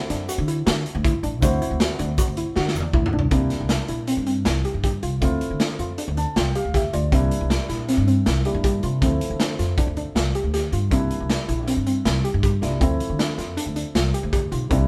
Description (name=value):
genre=progressive instrumental, band music in an uneven meter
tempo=158 BPM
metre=5/4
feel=straight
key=D minor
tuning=A4 = 445 Hz
part: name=warm grand piano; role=accompaniment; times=0.0-14.9 s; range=F3 to A5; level=-33 LUFS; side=equal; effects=none
part: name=soft round pluck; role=arpeggios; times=0.1-14.9 s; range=C4 to G4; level=-29 LUFS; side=equal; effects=chorus
part: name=upright bass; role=bass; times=0.1-14.9 s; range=A1 to D3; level=-26 LUFS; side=equal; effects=none
part: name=raw garage drum kit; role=drums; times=0.1-14.8 s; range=hi-hat, kick drum, snare drum, toms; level=-27 LUFS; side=equal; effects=none
part: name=tube shaker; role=percussion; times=0.1-2.9 s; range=none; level=-43 LUFS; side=equal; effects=none
room=moderate studio reverb, RT60 0.8 s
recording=band playing live in one room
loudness=-22 LUFS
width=mono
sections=0.0-3.3 A section; 3.3-14.9 B section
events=drum fill 2.6-3.3; grand piano fill 6.0-7.1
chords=0.0 D7; 3.3 C7; 5.2 Dm7; 7.1 C7; 9.0 Dm7; 10.9 C7; 12.8 Dm7